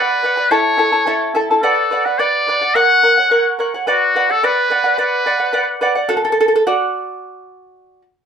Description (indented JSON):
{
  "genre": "andean folk, Andean ensemble",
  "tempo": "108 BPM",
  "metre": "2/4",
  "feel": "straight",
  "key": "B minor",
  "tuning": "A4 = 440 Hz",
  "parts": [
    { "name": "trumpet with metal mute", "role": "melody", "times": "0.0-5.8 s", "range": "F#4 to F#5", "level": "-15 LUFS", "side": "left 2 dB", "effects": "none" },
    { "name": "charango", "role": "accompaniment", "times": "0.0-8.0 s", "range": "E4 to A5", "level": "-16 LUFS", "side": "right 1 dB", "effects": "none" }
  ],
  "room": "moderate small room ambience, RT60 0.5 s",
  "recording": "heard from further back in the room",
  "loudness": "-13 LUFS",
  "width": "side -7 dB against mid",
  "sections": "0.0-6.1 A section; 6.1-8.3 B section",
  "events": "charango solo 6.1-8.3",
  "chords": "0.0 Bm; 0.5 A; 1.6 Bm; 2.7 F#; 3.9 Bm; 6.1 N.C.",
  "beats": "| 0.52 1.07 | 1.63 2.19 | 2.75 3.31 | 3.86 4.42 | 4.98 5.54 | 6.09 6.65 | 7.21 7.77"
}